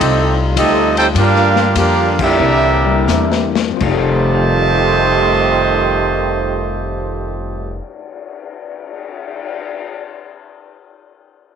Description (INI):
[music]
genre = jazz, big band swing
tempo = 78-108 BPM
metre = 4/4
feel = swing 68% on 8ths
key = F major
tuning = A4 = 440 Hz
[part]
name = clear trumpet section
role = melody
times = 0.0-7.8 s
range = C4 to A5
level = -16 LUFS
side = right 1 dB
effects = none
[part]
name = bright trombone section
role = second line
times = 0.0-7.8 s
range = F2 to G4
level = -19 LUFS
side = right 12 dB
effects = none
[part]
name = vintage hollow-body jazz guitar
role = accompaniment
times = 0.0-7.9 s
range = G2 to G4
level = -25 LUFS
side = left 14 dB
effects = none
[part]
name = warm trombone section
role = sustained chords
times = 0.0-7.8 s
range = D3 to F4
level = -22 LUFS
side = equal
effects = none
[part]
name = upright bass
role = bass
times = 0.0-7.8 s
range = F1 to G2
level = -19 LUFS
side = left 1 dB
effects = none
[part]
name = vintage drum kit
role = drums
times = 0.0-9.8 s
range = crash cymbal, cymbal swell, hi-hat, kick drum, ride cymbal, snare drum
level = -22 LUFS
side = left 8 dB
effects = none
[part]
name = warm concert grand piano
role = accompaniment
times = 2.9-9.3 s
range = F2 to Eb7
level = -24 LUFS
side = left 13 dB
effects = none
[sound]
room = light reverb, studio reverb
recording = 1960s-style stereo with parts hard left and right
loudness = -12 LUFS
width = side -7 dB against mid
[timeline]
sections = 0.0-3.8 A section; 3.8-9.9 B section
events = slowing down 0.0-3.8; band accent 2.1-2.4; drum fill 3.1-3.8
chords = 0.0 F9; 1.1 Gm7; 2.4 C9; 3.8 F9